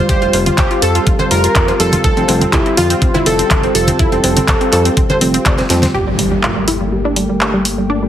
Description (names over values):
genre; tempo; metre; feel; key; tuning
progressive house; 123 BPM; 4/4; straight; unclear; A4 = 440 Hz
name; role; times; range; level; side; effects
plucky unison lead; melody; 0.0-5.7 s; E4 to C5; -17 LUFS; equal; digital delay
lush unison pad; sustained chords; 0.0-8.1 s; G3 to G4; -20 LUFS; equal; chorus, sidechain pumping
wide unison pluck; arpeggios; 0.0-8.1 s; G3 to D5; -18 LUFS; equal; sidechain pumping, digital delay
fat analog bass; bass; 0.1-8.1 s; F1 to F2; -18 LUFS; equal; sidechain pumping
deep house drum kit; drums; 0.1-7.8 s; handclaps, hi-hat, snare drum; -18 LUFS; equal; overdrive
electronic kick drum; drums; 0.1-5.6 s; none; -15 LUFS; equal; none
cowbell and congas; percussion; 0.3-5.9 s; none; -22 LUFS; right 1 dB; sidechain pumping on perc
impact; sound effects; 5.9-7.9 s; none; -23 LUFS; equal; none
room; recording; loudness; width
moderate digital room reverb, RT60 1.1 s; heavily compressed radio sound, faint mains hum; -11 LUFS; side -10 dB against mid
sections
0.0-5.9 A section; 5.9-8.1 B section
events
drum fill 5.6-5.9; impact 5.9-7.9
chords
0.0 F; 5.9 Gmadd9